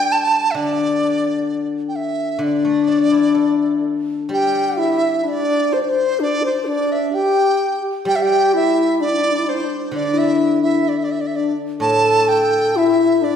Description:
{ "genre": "chinese traditional, Chinese chamber ensemble", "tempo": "64 BPM", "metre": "2/4", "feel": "rubato", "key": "D shang mode", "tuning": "A4 = 440 Hz", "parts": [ { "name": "mellow dizi", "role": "melody", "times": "0.0-13.4 s", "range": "C5 to A5", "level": "-20 LUFS", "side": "right 4 dB", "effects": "none" }, { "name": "steel-string zither", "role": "accompaniment", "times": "0.0-13.4 s", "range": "A2 to D5", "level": "-20 LUFS", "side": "left 4 dB", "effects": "none" }, { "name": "breathy low xiao", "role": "second line", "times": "4.3-13.4 s", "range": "D4 to C5", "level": "-18 LUFS", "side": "left 3 dB", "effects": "none" } ], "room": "wet scoring stage reverb, RT60 1.5 s", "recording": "recorded in a church or concert hall", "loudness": "-15 LUFS", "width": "side -8 dB against mid", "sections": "0.0-4.3 A section; 4.3-13.4 B section", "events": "none", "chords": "none", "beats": "| 0.57 1.49 | 2.41 3.35 | 4.31 5.26 | 6.20 7.14 | 8.07 8.99 | 9.92 10.86 | 11.81 12.77" }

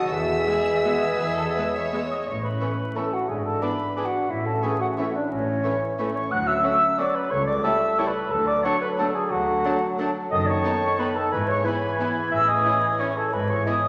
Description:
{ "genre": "classical, orchestral ballroom waltz", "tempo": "157-194 BPM", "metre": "3/4", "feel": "rubato", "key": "A major, E major from 10.3 s", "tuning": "A4 = 440 Hz", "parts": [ { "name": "rich chamber violin section", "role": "melody", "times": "0.0-13.7 s", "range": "E5 to E6", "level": "-42 LUFS", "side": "equal", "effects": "none" }, { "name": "mellow clarinet", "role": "second line", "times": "0.0-13.9 s", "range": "C#4 to F#5", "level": "-30 LUFS", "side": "equal", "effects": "none" }, { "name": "silver concert flute", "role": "second line", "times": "0.0-13.9 s", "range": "C#5 to F#6", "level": "-29 LUFS", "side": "equal", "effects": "none" }, { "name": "warm oboe", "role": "second line", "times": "0.0-13.9 s", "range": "G#4 to D6", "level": "-35 LUFS", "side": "equal", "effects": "none" }, { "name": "mellow French horn section", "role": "sustained chords", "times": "0.0-13.9 s", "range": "D#3 to A4", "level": "-32 LUFS", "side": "equal", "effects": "none" }, { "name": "rich symphonic cello section", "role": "bass", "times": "0.0-13.6 s", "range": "C#2 to E3", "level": "-38 LUFS", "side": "equal", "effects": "none" }, { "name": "warm bassoon", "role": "accompaniment", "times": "0.1-13.9 s", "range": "B2 to G3", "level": "-35 LUFS", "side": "equal", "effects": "none" }, { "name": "rich studio double bass section", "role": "bass", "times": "0.1-13.6 s", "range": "F#1 to E2", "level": "-35 LUFS", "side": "equal", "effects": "none" }, { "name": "warm chamber violin section", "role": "second line", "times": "0.5-13.7 s", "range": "C#4 to C#5", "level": "-37 LUFS", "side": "equal", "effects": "none" }, { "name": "rich studio viola section", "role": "accompaniment", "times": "0.5-13.8 s", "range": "G#3 to C#4", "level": "-38 LUFS", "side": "equal", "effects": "none" } ], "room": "wet scoring stage reverb, RT60 2.1 s", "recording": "vinyl crackle", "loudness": "-24 LUFS", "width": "mono", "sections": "0.0-2.3 A section; 2.3-13.9 B section", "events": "none", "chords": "0.1 E; 2.3 A; 3.3 E7/G#; 4.3 A; 6.3 Dmaj7; 7.3 A7/C#; 8.3 D; 10.3 B7/F#; 11.3 E/G#; 12.3 Amaj7; 13.3 E/G#", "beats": "| 0.10 0.47 0.84 | 1.20 1.56 1.93 | 2.27 2.61 2.96 | 3.29 3.63 3.97 | 4.30 4.63 4.98 | 5.31 5.64 5.99 | 6.31 6.64 6.99 | 7.31 7.64 7.98 | 8.30 8.63 8.98 | 9.31 9.64 9.99 | 10.31 10.64 10.99 | 11.31 11.65 11.99 | 12.32 12.65 13.00 | 13.33 13.67" }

